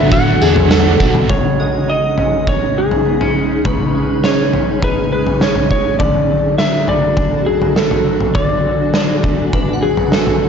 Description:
dream pop; 102 BPM; 4/4; straight; A4 = 441 Hz
electric slide guitar; melody; 0.0-10.5 s; G#4 to F#5; -18 LUFS; right 1 dB; tape echo
overdriven electric guitar; accompaniment; 0.0-1.3 s; D3 to D4; -23 LUFS; right 4 dB; tremolo, wide subtle chorus
granular cloud pad; sustained chords; 0.0-10.5 s; C#4 to G#5; -20 LUFS; right 2 dB; built-in reverb
semi-hollow electric guitar; arpeggios; 0.0-10.5 s; C#3 to D#4; -21 LUFS; left 3 dB; analog chorus, tape echo
fat analog bass; bass; 0.0-1.3 s; A1 to E2; -16 LUFS; equal; transformer saturation
shimmering bell with halo; texture; 0.0-10.5 s; G#4 to F#5; -31 LUFS; left 1 dB; ensemble chorus, tape echo
oversized low-tuned drum kit; drums; 0.1-10.4 s; kick drum, snare drum, tambourine, toms; -16 LUFS; equal
light reverb, studio ambience; dry, gritty hardware recording, nothing above 7.6 kHz; -12 LUFS; side -7 dB against mid
0.0-1.3 A section; 1.3-10.5 B section
0.0 D; 1.3 C#sus2; 6.0 D

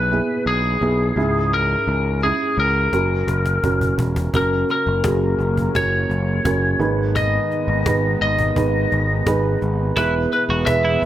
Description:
piano-driven pop; 85 BPM; 4/4; straight; A4 = 438 Hz
lightly driven lead guitar; melody; 0.0-11.1 s; G#4 to E5; -21 LUFS; left 2 dB
dark upright piano; accompaniment; 0.0-11.1 s; G#2 to B4; -22 LUFS; right 3 dB
overdriven picked electric bass; bass; 0.0-11.1 s; E1 to C#2; -21 LUFS; equal
cajon; drums; 2.9-11.1 s; -26 LUFS; left 1 dB
airy breathy pad; sustained chords; 4.3-11.1 s; E3 to B4; -30 LUFS; equal; chorus
twelve-string electric guitar; riff; 10.0-11.0 s; E4 to F#4; -24 LUFS; right 3 dB
light reverb, studio reverb; -17 LUFS; side -12 dB against mid
0.0-4.3 A section; 4.3-11.1 B section
drum fill 2.9-4.3
0.0 E/B; 1.2 C#m; 2.9 F#; 6.8 G#m; 10.0 E

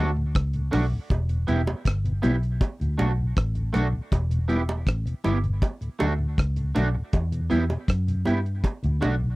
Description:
roots reggae; 80 BPM; 4/4; straight; E dorian; A4 = 440 Hz
electric guitar at the edge of break-up; accompaniment; 0.0-9.1 s; A3 to G4; -29 LUFS; right 3 dB; analog chorus
mellow tonewheel organ; accompaniment; 0.0-9.3 s; D2 to E4; -28 LUFS; left 1 dB; slow rotary speaker
vintage muted fingered electric bass; bass; 0.0-9.4 s; E1 to G2; -24 LUFS; equal
deep reggae drum kit; drums; 0.3-9.2 s; hi-hat, kick drum, rim click; -23 LUFS; equal
bongos; percussion; 0.7-9.2 s; -31 LUFS; right 2 dB
little or no reverb; dry, close 1970s-style studio recording; -22 LUFS; side -20 dB against mid
0.0-9.4 A section
0.0 D; 1.1 Em; 2.6 D; 4.1 Em; 5.6 D; 7.1 Em; 8.6 D

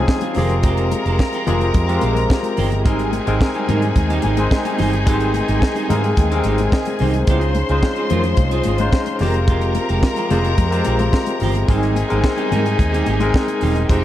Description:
disco; 109 BPM; 4/4; straight; A4 = 440 Hz
clear studio string section; second line; 0.0-14.0 s; G4 to C6; -25 LUFS; left 2 dB
barky tine electric piano; accompaniment; 0.0-14.0 s; F3 to G5; -22 LUFS; left 3 dB; overdrive, fast tremolo
muted French horn section; sustained chords; 0.0-14.0 s; C3 to C5; -28 LUFS; right 1 dB
vintage muted fingered electric bass; bass; 0.0-14.0 s; E1 to Ab2; -20 LUFS; equal
clean electric guitar; accompaniment; 0.1-14.0 s; F3 to Bb4; -25 LUFS; right 5 dB
tight funk drum kit; drums; 0.1-14.0 s; hi-hat, kick drum, snare drum; -19 LUFS; equal
congas; percussion; 0.1-14.0 s; -28 LUFS; left 6 dB
small room ambience; dark, warm production; -15 LUFS; side -12 dB against mid
0.0-14.0 A section
tine electric piano fill 5.6-7.3
0.4 Fmadd9; 2.9 Abmaj7; 7.3 Dbmaj7; 9.2 Fmadd9; 11.7 Abmaj7

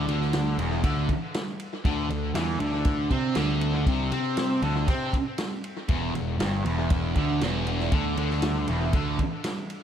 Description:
psychedelic rock; 118 BPM; 4/4; straight; E minor; A4 = 440 Hz
thick fuzz guitar; riff; 0.0-9.2 s; E2 to C4; -27 LUFS; equal; distortion, phaser, tape echo
fuzz picked electric bass; bass; 0.0-9.2 s; E1 to C3; -28 LUFS; equal; overdrive
vintage drum kit; drums; 0.1-9.8 s; kick drum, ride cymbal, snare drum; -29 LUFS; equal; tape echo
small room reverb; echo-heavy mix; -24 LUFS; side -9 dB against mid
0.0-9.8 A section
0.0 E7(no3); 1.8 N.C.; 5.9 Em7

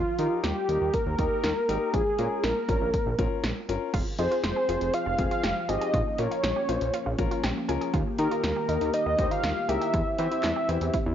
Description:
synth-pop; 120 BPM; 4/4; straight; Bb dorian; A4 = 438 Hz
wide unison lead; melody; 0.0-11.1 s; F4 to F5; -28 LUFS; equal; analog delay
fat analog bass; bass; 0.0-11.1 s; F1 to E3; -30 LUFS; right 1 dB
warm concert grand piano; accompaniment; 0.2-10.9 s; C4 to C5; -33 LUFS; left 8 dB
deep house drum kit; drums; 0.2-11.1 s; crash cymbal, handclaps, hi-hat, kick drum, snare drum; -31 LUFS; equal
chorused pulse-width pad; sustained chords; 3.9-11.1 s; Eb3 to Ab4; -35 LUFS; equal
analog pluck; arpeggios; 3.9-11.1 s; C4 to Ab4; -36 LUFS; right 4 dB; chorus, analog delay
moderate plate reverb, RT60 1.7 s; nothing above 7.4 kHz; -24 LUFS; side -10 dB against mid
0.0-3.9 A section; 3.9-11.1 B section
0.0 Eb; 1.9 Bbm; 3.9 Fm; 5.9 Bbm; 7.9 Eb; 9.9 C/E

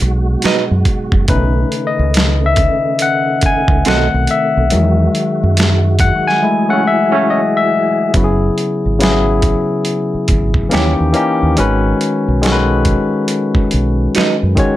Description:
R&B, neo-soul; 70 BPM; 4/4; swing 61% on 16ths; F# dorian; A4 = 440 Hz
barky tine electric piano; accompaniment; 0.0-14.8 s; C#3 to G#5; -15 LUFS; left 3 dB; overdrive
tonewheel organ; sustained chords; 0.0-8.1 s; B2 to G#4; -22 LUFS; right 2 dB; slow rotary speaker, overdrive, chorus vibrato
deep dub fingered electric bass; bass; 0.0-14.6 s; F#1 to F#2; -15 LUFS; right 1 dB
vintage hollow-body jazz guitar; second line; 0.4-4.1, 10.7-14.4 s; A#3 to D#5; -18 LUFS; right 7 dB; plate reverb
boom bap sampler-style drum kit; drums; 0.4-14.8 s; hi-hat, kick drum, snare drum; -16 LUFS; right 1 dB
clear trombone section; stabs; 6.7-7.4 s; C#3 to C#4; -18 LUFS; right 5 dB
light reverb; -11 LUFS; side -14 dB against mid
0.0-8.1 A section; 8.1-14.8 B section
tine electric piano solo 0.0-8.1; band accent 4.7-8.1; silent gap 6.4-8.1
0.0 G#m7; 1.3 B9; 3.9 B7b9; 4.7 Emaj9; 6.4 F#m9; 8.1 F#sus2; 10.7 D#7b9; 11.6 G#m7

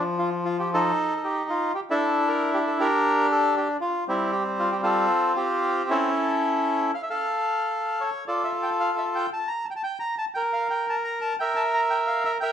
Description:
tango; 116 BPM; 4/4; rubato; F major; A4 = 439 Hz
bandoneon; solo; 0.0-12.5 s; F3 to Bb5; -22 LUFS; equal
moderate large studio reverb, RT60 1.1 s; band playing live in one room; -22 LUFS; side -9 dB against mid
0.0-7.2 A section; 7.2-12.5 B section
0.0 F9; 1.0 F13; 2.0 Gm69/D; 3.0 G5/D; 4.1 C5; 5.1 F5; 6.1 A; 7.2 Fmaj13; 9.3 N.C.; 11.4 Edim

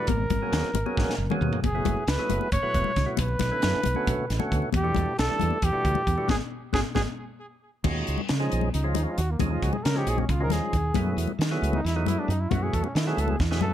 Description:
electric jazz fusion; 270 BPM (eighths); 7/8; straight; Eb minor from 7.8 s; A4 = 441 Hz
mellow trumpet; melody; 0.0-13.7 s; Bb3 to C#5; -30 LUFS; equal
percussive tonewheel organ; accompaniment; 0.0-13.7 s; D3 to B4; -32 LUFS; right 2 dB; slow rotary speaker
woody fretless electric bass; bass; 0.1-13.7 s; E1 to Eb3; -27 LUFS; right 1 dB; lush chorus
crisp fusion drum kit; drums; 0.1-13.6 s; crash cymbal, hi-hat, kick drum, snare drum, toms; -30 LUFS; equal
congas; percussion; 0.1-13.7 s; -32 LUFS; left 13 dB
light reverb, small room ambience; dark, warm production; -23 LUFS; side -11 dB against mid
0.0-7.8 A section; 7.8-13.7 B section
drum fill 1.0-1.6, 7.2-7.8, 13.4-13.7; band accent 6.3-7.8; trumpet solo 7.8-13.7
0.1 G#m11; 1.6 F#m11; 3.2 Bm11; 4.7 Em11; 6.3 G#m7; 7.8 Ebm11; 11.0 Gbm11

